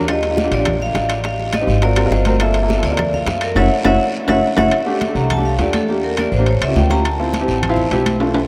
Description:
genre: Afro-Cuban jazz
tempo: 207 BPM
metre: 4/4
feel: straight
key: unclear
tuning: A4 = 435 Hz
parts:
  - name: warm upright piano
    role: accompaniment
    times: 0.0-8.4 s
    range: A3 to Bb4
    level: -23 LUFS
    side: equal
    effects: none
  - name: upright bass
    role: bass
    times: 0.0-8.5 s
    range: Gb1 to Gb2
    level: -22 LUFS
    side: equal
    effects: none
  - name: vibraphone with medium hard mallets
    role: melody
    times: 0.1-7.9 s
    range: G4 to Bb5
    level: -22 LUFS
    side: equal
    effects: none
  - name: bongos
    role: percussion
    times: 0.1-4.6 s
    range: none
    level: -32 LUFS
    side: equal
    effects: none
  - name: claves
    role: percussion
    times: 0.1-8.2 s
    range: none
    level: -34 LUFS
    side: equal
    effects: none
  - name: congas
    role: percussion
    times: 0.1-8.5 s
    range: none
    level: -27 LUFS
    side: equal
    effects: none
  - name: guiro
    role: percussion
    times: 0.1-8.5 s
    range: none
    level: -36 LUFS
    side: equal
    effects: none
  - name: timbales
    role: percussion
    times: 0.1-8.4 s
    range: none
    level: -27 LUFS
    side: equal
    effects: none
room: wet huge ambient reverb, RT60 7.3 s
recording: in a vast, echoing space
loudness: -17 LUFS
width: mono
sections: 0.0-4.7 A section; 4.7-8.5 B section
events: band accent 3.6-4.7; drum fill 4.1-4.7, 8.2; vibraphone solo 4.7-8.5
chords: 0.1 Ebmaj7; 1.2 Am7b5; 1.8 Ab13; 2.4 Gm9; 3.6 Gb5; 4.7 C69; 5.9 Em7b5; 6.5 A7b13; 7.0 Dm9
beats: | 0.08 0.37 0.66 0.95 | 1.24 1.53 1.82 2.11 | 2.40 2.69 2.98 3.27 | 3.56 3.85 4.14 4.43 | 4.72 5.01 5.30 5.59 | 5.88 6.17 6.46 6.75 | 7.04 7.33 7.62 7.91 | 8.20

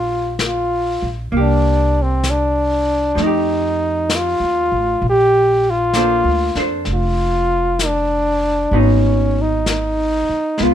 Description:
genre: jazz ballad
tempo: 65 BPM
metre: 4/4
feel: swing 68% on 8ths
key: Bb major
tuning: A4 = 440 Hz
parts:
  - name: mellow flugelhorn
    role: melody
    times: 0.0-10.7 s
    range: C4 to G4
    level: -17 LUFS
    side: equal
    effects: none
  - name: vintage hollow-body jazz guitar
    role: accompaniment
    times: 0.0-10.7 s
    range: F3 to C5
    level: -21 LUFS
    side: equal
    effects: none
  - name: upright bass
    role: bass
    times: 0.0-10.7 s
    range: F1 to F2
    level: -20 LUFS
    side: equal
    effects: none
  - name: vintage brush drum kit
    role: drums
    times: 0.4-10.7 s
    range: brushed snare drum, hi-hat, snare drum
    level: -27 LUFS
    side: left 4 dB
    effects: none
room: little or no reverb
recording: minimal, uncompressed stereo recording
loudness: -14 LUFS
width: side -10 dB against mid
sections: 0.0-10.7 A section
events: none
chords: 0.0 Ebmaj9 (rootless); 1.3 C5; 3.2 F9; 5.0 Bbmaj9; 8.7 Abm7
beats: 0.38 | 1.31 2.24 3.17 4.09 | 5.02 5.94 6.86 7.79 | 8.71 9.64 10.58

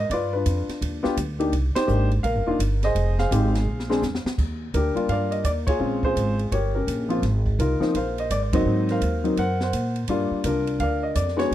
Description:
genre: jazz piano trio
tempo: 168 BPM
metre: 4/4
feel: swing 64% on 8ths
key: unclear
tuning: A4 = 440 Hz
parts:
  - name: dark baby grand piano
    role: melody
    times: 0.0-11.5 s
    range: F3 to Gb5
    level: -24 LUFS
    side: left 1 dB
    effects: none
  - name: upright bass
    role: bass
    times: 0.0-11.5 s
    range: Eb1 to Bb2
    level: -24 LUFS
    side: equal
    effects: none
  - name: open jazz drum kit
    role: drums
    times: 0.1-11.5 s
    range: crash cymbal, hi-hat, kick drum, ride cymbal, snare drum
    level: -31 LUFS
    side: right 1 dB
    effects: none
room: small room ambience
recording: dry, close 1970s-style studio recording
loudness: -21 LUFS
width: side -12 dB against mid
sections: 0.0-4.4 A section; 4.4-11.5 B section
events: band accent 1.7, 5.6, 8.5; drum fill 3.7-4.4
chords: 0.1 G7; 1.5 Cm7; 2.9 Fm7; 3.7 Bb7(no3); 4.4 Ebmaj9; 5.8 Bbm7; 6.5 Gm7b5; 7.2 Ab69; 8.7 Ab9; 10.1 Gm7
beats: | 0.09 0.45 0.81 1.16 | 1.52 1.88 2.23 2.59 | 2.95 3.30 3.66 4.02 | 4.37 4.73 5.09 5.44 | 5.80 6.16 6.51 6.87 | 7.23 7.58 7.94 8.29 | 8.65 9.01 9.37 9.72 | 10.08 10.43 10.79 11.15 | 11.50

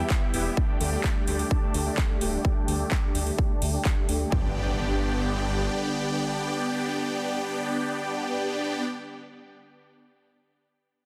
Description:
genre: EDM, festival progressive house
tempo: 128 BPM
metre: 4/4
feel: straight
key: G major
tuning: A4 = 442 Hz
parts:
  - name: lush unison pad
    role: sustained chords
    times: 0.0-8.8 s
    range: D3 to G4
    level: -37 LUFS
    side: equal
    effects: chorus, sidechain pumping
  - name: supersaw chords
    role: riff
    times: 0.0-8.8 s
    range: A3 to A5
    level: -32 LUFS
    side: equal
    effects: phaser, sidechain pumping, low-pass filter, tape echo
  - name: detuned saw bass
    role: bass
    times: 0.0-5.7 s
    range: D1 to D2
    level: -31 LUFS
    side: equal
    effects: chorus, sidechain pumping
  - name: big-room dance drum kit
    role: drums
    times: 0.1-4.2 s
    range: handclaps, hi-hat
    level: -36 LUFS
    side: equal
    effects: none
  - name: electronic kick drum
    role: drums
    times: 0.1-4.4 s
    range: none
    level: -28 LUFS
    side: equal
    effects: none
  - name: impact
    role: sound effects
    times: 4.3-9.1 s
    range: none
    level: -39 LUFS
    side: equal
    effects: none
room: light reverb, digital ambience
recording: dense, heavily limited modern master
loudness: -27 LUFS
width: mono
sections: 0.0-4.3 A section; 4.3-8.1 B section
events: filter sweep on supersaw synth 0.0-4.3; filter sweep on detuned saw bass 0.0-4.3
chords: 0.0 Em; 0.6 Dsus4; 4.3 G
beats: 0.10 | 0.57 1.04 1.51 1.98 | 2.45 2.92 3.38 3.85 | 4.32 4.79 5.26 5.73 | 6.20 6.67 7.13 7.60

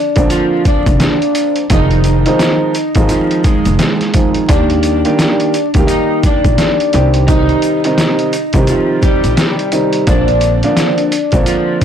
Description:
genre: hip hop, boom-bap hip-hop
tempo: 86 BPM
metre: 4/4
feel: swing 61% on 16ths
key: F dorian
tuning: A4 = 439 Hz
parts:
  - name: electric guitar at the edge of break-up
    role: melody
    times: 0.0-11.8 s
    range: F3 to Eb5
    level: -16 LUFS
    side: equal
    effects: wide subtle chorus, high-pass filter, low-pass filter, digital delay
  - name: warm upright piano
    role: accompaniment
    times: 0.2-11.8 s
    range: C3 to G4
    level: -16 LUFS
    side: right 2 dB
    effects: cassette tape, high-pass filter, low-pass filter
  - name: upright bass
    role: bass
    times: 0.2-11.4 s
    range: F1 to Eb2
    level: -15 LUFS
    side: equal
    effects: tube saturation
  - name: trip hop sampler-style drum kit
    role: drums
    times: 0.2-11.8 s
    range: hi-hat, kick drum, snare drum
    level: -14 LUFS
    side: equal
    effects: overdrive
  - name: egg shaker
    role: percussion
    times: 0.2-11.8 s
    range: none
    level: -35 LUFS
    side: left 6 dB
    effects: none
room: light reverb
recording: blown-out, overdriven recording, vinyl crackle, overdrive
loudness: -10 LUFS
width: side -9 dB against mid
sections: 0.0-11.8 A section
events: none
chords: 0.0 Bbadd9; 1.7 Fm7; 4.5 Ebmaj7; 6.9 Cm; 10.1 Bbadd9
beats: 0.31 1.00 | 1.70 2.40 3.10 3.79 | 4.49 5.19 5.89 6.58 | 7.28 7.98 8.68 9.38 | 10.07 10.77 11.47

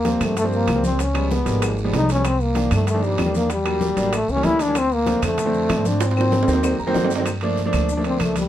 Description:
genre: Afro-Cuban jazz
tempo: 191 BPM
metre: 4/4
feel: straight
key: G minor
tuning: A4 = 439 Hz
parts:
  - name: warm trombone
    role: melody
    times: 0.0-8.5 s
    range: G3 to E4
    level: -21 LUFS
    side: left 2 dB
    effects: none
  - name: clear grand piano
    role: accompaniment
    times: 0.0-8.4 s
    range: D3 to Bb5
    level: -24 LUFS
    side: equal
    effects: none
  - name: upright bass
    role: bass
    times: 0.0-8.5 s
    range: G#1 to Ab2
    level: -24 LUFS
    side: right 1 dB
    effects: none
  - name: congas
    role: percussion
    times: 0.0-8.5 s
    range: none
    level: -30 LUFS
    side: left 1 dB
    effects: none
  - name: bongos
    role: percussion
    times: 0.1-7.3 s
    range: none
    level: -32 LUFS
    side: left 5 dB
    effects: none
  - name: guiro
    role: percussion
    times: 0.1-8.5 s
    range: none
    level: -38 LUFS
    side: right 6 dB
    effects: none
  - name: maracas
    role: percussion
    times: 0.1-8.5 s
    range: none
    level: -39 LUFS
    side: left 6 dB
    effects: none
  - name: timbales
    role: percussion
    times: 0.1-8.5 s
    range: none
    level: -28 LUFS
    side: right 5 dB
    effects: none
  - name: claves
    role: percussion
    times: 0.2-8.4 s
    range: none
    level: -35 LUFS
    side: left 4 dB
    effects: none
room: moderate studio ambience, RT60 0.4 s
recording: none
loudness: -18 LUFS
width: side -12 dB against mid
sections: 0.0-7.3 A section; 7.3-8.5 B section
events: drum fill 6.0-7.3; grand piano fill 6.6-7.3; trombone solo 7.3-8.5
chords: 0.0 Eb69; 1.0 C#7#11; 2.2 Cm11; 3.5 Em7b5; 4.1 A7b9; 4.8 Dm7; 6.0 Ab9; 7.3 Gm9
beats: 0.05 0.36 0.68 | 0.99 1.31 1.62 1.93 | 2.25 2.56 2.88 3.19 | 3.50 3.81 4.13 4.44 | 4.76 5.07 5.38 5.70 | 6.01 6.33 6.64 6.95 | 7.27 7.58 7.89 8.21

